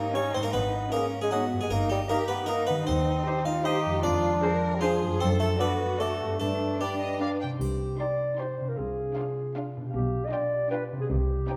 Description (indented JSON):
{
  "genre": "cinematic, playful, whimsical film cue",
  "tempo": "154 BPM",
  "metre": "3/4",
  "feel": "straight",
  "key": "C minor",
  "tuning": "A4 = 439 Hz",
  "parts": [
    { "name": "harpsichord", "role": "melody", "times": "0.0-7.2 s", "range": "F4 to F5", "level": "-35 LUFS", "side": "equal", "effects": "none" },
    { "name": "rich studio violin section", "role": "melody", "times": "0.0-11.6 s", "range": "C5 to C6", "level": "-45 LUFS", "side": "equal", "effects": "none" },
    { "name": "warm studio violin section", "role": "second line", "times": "0.0-11.6 s", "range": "Eb4 to B4", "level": "-45 LUFS", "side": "equal", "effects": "none" },
    { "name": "warm bassoon", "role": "accompaniment", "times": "0.0-7.2 s", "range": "F3 to F4", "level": "-32 LUFS", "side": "equal", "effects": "none" },
    { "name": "warm studio viola section", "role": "accompaniment", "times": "0.0-11.6 s", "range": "C4 to D#4", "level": "-42 LUFS", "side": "equal", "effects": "none" },
    { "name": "concert harp", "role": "arpeggios", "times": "0.0-11.6 s", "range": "F2 to F5", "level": "-35 LUFS", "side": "equal", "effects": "none" },
    { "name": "rich studio cello section", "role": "bass", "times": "0.0-11.4 s", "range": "B2 to Bb4", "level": "-36 LUFS", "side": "equal", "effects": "none" },
    { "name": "warm oboe", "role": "second line", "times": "0.1-7.4 s", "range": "C5 to D#5", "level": "-41 LUFS", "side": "equal", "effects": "none" },
    { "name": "warm French horn section", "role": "sustained chords", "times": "0.1-7.4 s", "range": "C#4 to B4", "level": "-39 LUFS", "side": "equal", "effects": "none" },
    { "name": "mellow clarinet", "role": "second line", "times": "0.2-11.6 s", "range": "G4 to Eb5", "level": "-36 LUFS", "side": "equal", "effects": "none" },
    { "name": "rich studio double bass section", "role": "bass", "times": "0.5-11.4 s", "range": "G1 to G2", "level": "-35 LUFS", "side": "equal", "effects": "none" },
    { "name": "triangle", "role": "percussion", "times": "7.6-8.4 s", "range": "none", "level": "-54 LUFS", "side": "equal", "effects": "none" }
  ],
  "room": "wet scoring stage reverb, RT60 1.6 s",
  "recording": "none",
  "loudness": "-28 LUFS",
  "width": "mono",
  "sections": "0.0-7.6 A section; 7.6-11.6 B section",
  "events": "none",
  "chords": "0.0 Gdim/G#; 0.5 G#m; 1.7 D#/G; 2.9 Cm/Eb; 4.0 Dm7b5/F; 5.2 D7/F#; 6.4 G; 7.6 Cm; 8.8 Dm7b5/C; 9.9 G7/B"
}